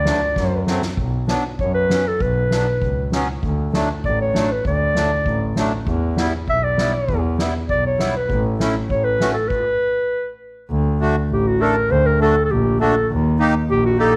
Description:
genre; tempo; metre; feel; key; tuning
klezmer; 99 BPM; 2/4; straight; B minor, D phrygian dominant from 10.7 s; A4 = 439 Hz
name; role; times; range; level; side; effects
dark clarinet; melody; 0.0-14.2 s; F#4 to E5; -22 LUFS; equal; none
warm double bass; bass; 0.0-14.1 s; A1 to F#2; -23 LUFS; equal; none
accordion; accompaniment; 0.1-14.1 s; F#3 to A4; -26 LUFS; equal; none
soft-mallet drum kit; drums; 0.1-9.6 s; crash cymbal, kick drum, snare drum; -28 LUFS; equal; none
room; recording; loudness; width
light reverb, small room ambience; none; -19 LUFS; mono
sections
1.0-10.7 A section; 10.7-14.2 B section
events
speeding up 0.0-14.2; drum fill 0.4-1.0; stop 9.5-10.7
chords
0.0 D; 1.0 Bm; 3.4 D; 5.9 Em; 8.3 A; 9.5 N.C.; 10.7 D; 13.1 Eb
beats
0.36 | 0.97 1.59 | 2.20 2.82 | 3.43 4.04 | 4.66 5.26 | 5.88 6.48 | 7.09 7.70 | 8.30 8.91 | 9.51 10.11 | 10.71 11.31 | 11.91 12.50 | 13.10 13.69

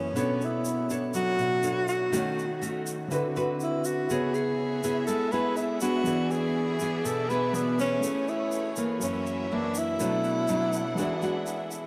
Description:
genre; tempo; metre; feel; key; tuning
bossa nova; 122 BPM; 4/4; straight; unclear; A4 = 440 Hz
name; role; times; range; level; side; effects
breathy tenor saxophone; melody; 0.0-11.5 s; B3 to B4; -31 LUFS; equal; none
nylon-string guitar; accompaniment; 0.0-11.9 s; F#2 to C#5; -32 LUFS; equal; none
warm grand piano; accompaniment; 0.0-11.9 s; B2 to E5; -39 LUFS; equal; none
tube shaker; percussion; 0.2-11.9 s; none; -43 LUFS; equal; none
warm symphonic violin section; sustained chords; 4.1-11.9 s; A3 to F#5; -41 LUFS; equal; none
room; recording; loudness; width
wet huge ambient reverb, RT60 8.8 s; in a vast, echoing space; -28 LUFS; mono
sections
0.0-11.9 A section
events
none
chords
0.2 Bm9; 2.1 D#m7b5; 3.1 D13; 4.1 C#m7; 6.1 E7; 8.0 Amaj9; 9.0 F#7b13; 10.0 Bm7; 11.0 E9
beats
| 0.16 0.65 1.15 1.64 | 2.13 2.62 3.11 3.60 | 4.09 4.59 5.08 5.57 | 6.06 6.55 7.05 7.54 | 8.03 8.52 9.01 9.50 | 9.99 10.49 10.98 11.47

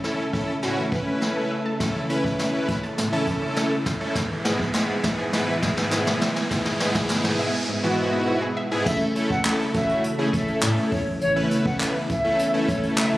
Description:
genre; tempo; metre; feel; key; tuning
dance-pop; 102 BPM; 4/4; straight; A major; A4 = 441 Hz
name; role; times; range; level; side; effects
big bright polysynth; accompaniment; 0.0-13.2 s; G#2 to B4; -25 LUFS; equal; chorus, sidechain pumping
ensemble organ-string; sustained chords; 0.0-13.2 s; B2 to A4; -30 LUFS; equal; ensemble chorus, sidechain pumping
wide unison pluck; arpeggios; 0.0-8.8 s; G#2 to A5; -32 LUFS; equal; sidechain pumping, ping-pong delay
jazz brush drum kit; drums; 0.0-13.1 s; crash cymbal, handclaps, hi-hat, kick drum, snare drum; -26 LUFS; equal; none
riser; sound effects; 1.5-7.7 s; none; -34 LUFS; right 1 dB; none
group handclap; percussion; 4.7-13.1 s; none; -35 LUFS; equal; none
silver concert flute; melody; 8.9-13.1 s; C#5 to F#5; -27 LUFS; equal; ping-pong delay
round analog bass; bass; 8.9-13.2 s; A1 to A2; -30 LUFS; equal; sidechain pumping
room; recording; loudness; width
moderate lush hall reverb, RT60 2.7 s; recorded on a phone in the room, club reverb, compression; -21 LUFS; side -16 dB against mid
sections
0.0-8.9 A section; 8.9-13.2 B section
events
build-up 0.0-8.9; drum fill 0.0-7.7; riser 1.5-8.9; drop 8.9-13.2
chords
0.0 A; 4.2 E/G#; 8.9 A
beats
0.04 0.63 1.22 | 1.80 2.39 2.98 3.57 | 4.16 4.74 5.33 5.92 | 6.51 7.10 7.68 8.27 | 8.86 9.45 10.04 10.63 | 11.21 11.80 12.39 12.98

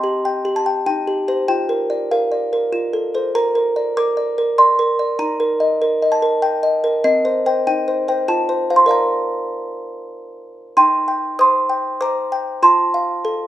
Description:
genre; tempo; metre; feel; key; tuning
classical, lullaby for music box; 97 BPM; 3/4; straight; Bb major; A4 = 440 Hz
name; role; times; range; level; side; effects
music box; solo; 0.0-13.5 s; C4 to Eb6; -15 LUFS; equal; none
room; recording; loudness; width
moderate large studio reverb, RT60 1.0 s; band playing live in one room; -15 LUFS; side -13 dB against mid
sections
0.0-10.8 A section; 10.8-13.5 B section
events
none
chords
0.0 C5; 0.9 Cm/Eb; 1.5 Bb/F; 2.7 F; 3.4 Bb; 5.2 Eb; 7.1 Cm; 7.7 Cm/Eb; 8.3 F; 8.9 Bb; 10.8 Cm/Eb; 12.6 F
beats
0.25 0.87 | 1.49 2.11 2.73 | 3.35 3.97 4.58 | 5.20 5.82 6.43 | 7.05 7.67 8.29 | 8.91 9.53 10.15 | 10.77 11.39 12.01 | 12.63 13.25

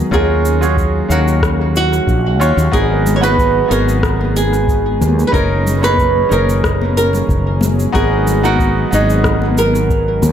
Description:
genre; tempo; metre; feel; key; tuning
sunset chillout; 92 BPM; 4/4; straight; G# dorian; A4 = 440 Hz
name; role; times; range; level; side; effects
flamenco guitar; melody; 0.0-10.3 s; D#4 to C#5; -17 LUFS; right 2 dB; dub echo
bright baby grand piano; accompaniment; 0.0-10.3 s; B3 to E#5; -20 LUFS; moving between left 3 dB and right 4 dB; auto-pan, dub echo
lush unison pad; sustained chords; 0.0-10.3 s; A#2 to G#4; -22 LUFS; equal; chorus
fretless electric bass; bass; 0.1-10.3 s; F#1 to D#2; -16 LUFS; equal; none
electronic cabasa and rim click; drums; 0.1-10.3 s; none; -25 LUFS; left 1 dB; overdrive, dub echo
electronic kick drum; drums; 0.1-10.0 s; none; -20 LUFS; equal; overdrive
congas; percussion; 3.1-10.3 s; none; -23 LUFS; left 3 dB; dub echo
room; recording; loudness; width
moderate spring reverb, RT60 1.5 s, digital ambience; echo-heavy mix; -12 LUFS; side -9 dB against mid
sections
0.0-10.3 A section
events
none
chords
0.1 D#m7; 2.7 G#m7; 5.3 F#6; 7.9 G#m7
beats
| 0.12 0.77 1.42 2.07 | 2.73 3.38 4.03 4.68 | 5.33 5.99 6.64 7.29 | 7.94 8.59 9.25 9.90

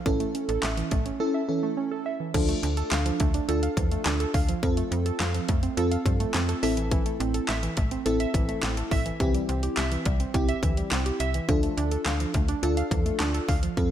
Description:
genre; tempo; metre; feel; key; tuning
synth-pop; 105 BPM; 4/4; straight; D minor; A4 = 440 Hz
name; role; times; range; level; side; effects
FM electric piano with soft pad layer; accompaniment; 0.1-13.9 s; C4 to A4; -29 LUFS; equal; chorus, tremolo
warbly dusty pluck; arpeggios; 0.1-13.9 s; E3 to F5; -31 LUFS; right 6 dB; chorus, ping-pong delay
slap-like FM bass; bass; 0.1-13.9 s; A1 to G2; -28 LUFS; left 1 dB; none
pop drum kit; drums; 0.1-13.9 s; crash cymbal, handclaps, hi-hat, kick drum, snare drum; -28 LUFS; left 1 dB; none
room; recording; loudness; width
light reverb, digital ambience; none; -24 LUFS; side -10 dB against mid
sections
0.0-2.3 A section; 2.3-13.9 B section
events
none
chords
0.1 A; 2.3 Dm; 4.6 F; 6.6 Am; 9.2 C; 11.5 Dm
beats
| 0.06 0.63 1.20 1.77 | 2.34 2.92 3.49 4.06 | 4.63 5.20 5.77 6.34 | 6.92 7.49 8.06 8.63 | 9.20 9.77 10.34 10.91 | 11.49 12.06 12.63 13.20 | 13.77

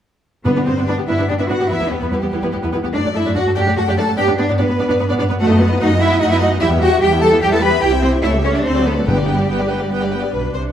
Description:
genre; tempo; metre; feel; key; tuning
quick classical-period movement for symphony orchestra; 146 BPM; 3/4; straight; G major; A4 = 440 Hz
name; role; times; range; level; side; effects
rich chamber violin section; melody; 0.5-10.6 s; G4 to G5; -25 LUFS; left 4 dB; none
rich chamber violin section; second line; 0.5-10.6 s; G4 to B5; -23 LUFS; left 2 dB; none
rich studio viola section; accompaniment; 0.5-10.7 s; F#3 to B4; -21 LUFS; right 2 dB; none
clear chamber double bass section; bass; 0.5-10.7 s; G1 to G2; -21 LUFS; equal; none
clear studio cello section; bass; 0.5-10.7 s; B2 to B4; -18 LUFS; right 1 dB; none
timpani; percussion; 0.5-1.0, 9.1-9.7 s; G2; -23 LUFS; left 1 dB; none
room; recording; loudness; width
moderate recital hall reverb, RT60 1.6 s; none; -14 LUFS; side -10 dB against mid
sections
0.5-10.3 A section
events
none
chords
0.5 G; 1.7 Em; 2.9 D/F#; 4.2 G; 5.4 B7/F#; 6.6 Em; 7.8 C; 8.2 A7/C#; 8.7 D7; 9.1 G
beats
| 0.46 0.87 1.29 | 1.70 2.12 2.53 | 2.94 3.35 3.77 | 4.17 4.58 4.99 | 5.40 5.80 6.21 | 6.61 7.02 7.42 | 7.83 8.24 8.66 | 9.08 9.50 9.93 | 10.34

